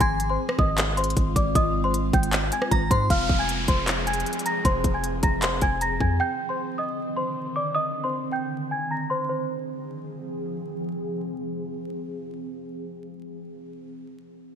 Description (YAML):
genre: hip hop, trap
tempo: 155 BPM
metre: 4/4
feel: half-time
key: F dorian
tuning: A4 = 436 Hz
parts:
  - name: small celesta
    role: melody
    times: 0.0-10.4 s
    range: C5 to Bb6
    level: -26 LUFS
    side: equal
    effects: low-pass filter, ping-pong delay
  - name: glassy synth bell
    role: second line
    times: 0.0-0.4, 2.7-3.1 s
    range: Bb5 to C6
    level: -32 LUFS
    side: right 1 dB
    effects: chorus, phaser, ping-pong delay
  - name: ethereal airy pad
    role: sustained chords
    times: 0.0-13.2 s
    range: D3 to Ab4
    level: -31 LUFS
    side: right 1 dB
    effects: ensemble chorus, built-in reverb, low-pass filter
  - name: long sustained 808-style bass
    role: bass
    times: 0.0-6.2 s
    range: F1 to Ab2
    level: -27 LUFS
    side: equal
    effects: none
  - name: trap drum kit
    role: drums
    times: 0.0-6.1 s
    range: handclaps, hi-hat, kick drum, rim click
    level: -24 LUFS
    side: equal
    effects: gated reverb
  - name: downlifter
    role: sound effects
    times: 3.1-6.2 s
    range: none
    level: -33 LUFS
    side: equal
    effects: none
room: moderate lush hall reverb, RT60 1.8 s, digital ambience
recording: bright 1980s-style digital production, vinyl crackle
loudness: -23 LUFS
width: side -8 dB against mid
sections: 0.0-3.1 A section; 3.1-9.3 B section; 9.3-12.4 C section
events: none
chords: 0.0 Ab6; 3.1 Fm; 6.2 Cmadd9; 9.3 Fm